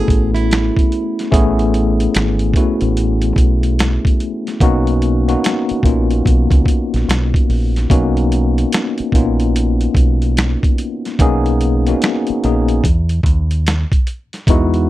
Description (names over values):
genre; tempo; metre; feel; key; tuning
R&B, neo-soul; 73 BPM; 4/4; swing 63% on 16ths; unclear; A4 = 439 Hz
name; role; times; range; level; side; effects
nylon-string guitar; second line; 0.0-1.5 s; E4 to G#4; -23 LUFS; right 8 dB; none
tine electric piano; accompaniment; 0.0-14.9 s; G#3 to A4; -17 LUFS; left 2 dB; medium stereo tremolo
deep dub fingered electric bass; bass; 0.1-14.9 s; G#1 to E2; -16 LUFS; equal; none
boom bap sampler-style drum kit; drums; 0.1-14.9 s; hi-hat, kick drum, snare drum; -16 LUFS; equal; none
room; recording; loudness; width
little or no reverb; dry, close 1970s-style studio recording; -13 LUFS; side -15 dB against mid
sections
0.0-14.9 A section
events
none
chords
0.0 Amaj9; 4.6 Bmaj9; 12.8 Emaj9